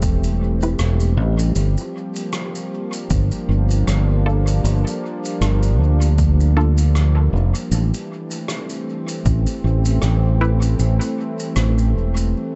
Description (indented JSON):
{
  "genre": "ambient dub",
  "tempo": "78 BPM",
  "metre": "4/4",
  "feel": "swing 56% on 16ths",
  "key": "G dorian",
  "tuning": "A4 = 443 Hz",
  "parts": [
    { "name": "warm analog pad", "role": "sustained chords", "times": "0.0-12.6 s", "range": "E3 to G4", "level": "-27 LUFS", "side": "equal", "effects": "chorus" },
    { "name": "fingered electric bass", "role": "bass", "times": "0.0-12.3 s", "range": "E1 to D2", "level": "-18 LUFS", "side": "equal", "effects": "tube saturation" },
    { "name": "electronic kick drum", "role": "drums", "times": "0.0-9.4 s", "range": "none", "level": "-24 LUFS", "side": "equal", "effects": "overdrive" },
    { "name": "shaker and rim click", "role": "drums", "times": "0.0-12.3 s", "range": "none", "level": "-34 LUFS", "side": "equal", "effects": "dub echo" },
    { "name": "filtered dub chord stab", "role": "stabs", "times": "0.6-10.7 s", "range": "Bb3 to B4", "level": "-31 LUFS", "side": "equal", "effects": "phaser, cassette tape, dub echo" }
  ],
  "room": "studio reverb",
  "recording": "dark, warm production, nothing above 8.0 kHz",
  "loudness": "-19 LUFS",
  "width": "mono",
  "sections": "0.0-12.6 A section",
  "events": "break 12.3",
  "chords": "0.0 Am7; 1.6 Gm7; 7.7 Am7"
}